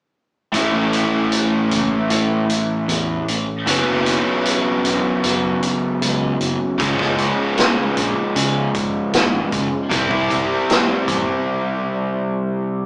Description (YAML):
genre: psychedelic rock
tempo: 77 BPM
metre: 4/4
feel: straight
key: unclear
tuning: A4 = 439 Hz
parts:
  - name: overdriven electric guitar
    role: riff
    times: 0.5-12.9 s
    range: F#2 to E4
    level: -21 LUFS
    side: equal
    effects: none
  - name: fuzz fingered electric bass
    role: bass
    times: 0.5-11.2 s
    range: E1 to C#3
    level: -27 LUFS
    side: equal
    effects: overdrive
  - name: vintage drum kit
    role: drums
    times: 0.5-11.3 s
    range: hi-hat, kick drum, snare drum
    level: -24 LUFS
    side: equal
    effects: none
room: moderate large studio reverb, RT60 0.9 s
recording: band playing live in one room, small speaker sound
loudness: -19 LUFS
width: mono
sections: 0.5-12.9 A section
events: break 11.5-12.9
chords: 0.5 A; 3.7 F#sus4; 6.8 C#; 9.9 C